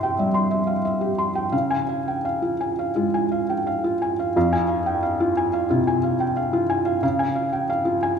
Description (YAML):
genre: neoclassical minimalist piano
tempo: 84-94 BPM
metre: 4/4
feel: rubato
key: F harmonic minor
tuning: A4 = 435 Hz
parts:
  - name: felt-muted upright piano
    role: solo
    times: 0.0-8.2 s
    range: F2 to C6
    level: -20 LUFS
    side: equal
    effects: none
room: wet scoring stage reverb, RT60 1.6 s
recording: recorded in a church or concert hall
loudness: -20 LUFS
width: side -7 dB against mid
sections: 0.0-4.4 A section; 4.4-8.2 A section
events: none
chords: 0.0 C; 1.5 Db; 4.4 Fm; 7.0 Db